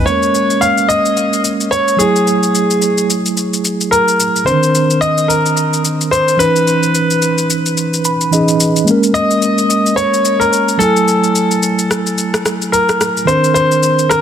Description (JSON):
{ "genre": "amapiano", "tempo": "109 BPM", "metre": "4/4", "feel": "swing 58% on 16ths", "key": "unclear", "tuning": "A4 = 439 Hz", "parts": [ { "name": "clear baby grand piano", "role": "melody", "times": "0.0-14.2 s", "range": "Ab4 to F5", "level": "-14 LUFS", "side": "equal", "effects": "tape echo" }, { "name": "mellow tine electric piano", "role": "accompaniment", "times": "0.0-14.2 s", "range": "D3 to Cb6", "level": "-15 LUFS", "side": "right 1 dB", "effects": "medium stereo tremolo" }, { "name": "electronic shaker and rim click", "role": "drums", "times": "0.1-14.2 s", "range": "none", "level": "-19 LUFS", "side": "left 2 dB", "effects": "overdrive" } ], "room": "light reverb, digital ambience", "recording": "dense, heavily limited modern master", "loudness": "-11 LUFS", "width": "side -9 dB against mid", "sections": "0.1-14.2 A section", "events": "tine electric piano fill 7.8-8.9", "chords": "0.1 Bbm7; 2.0 Gbm9; 4.5 Cm9; 6.4 Dbm9; 8.9 Bbm7; 10.8 Gbm9; 13.3 Cm9" }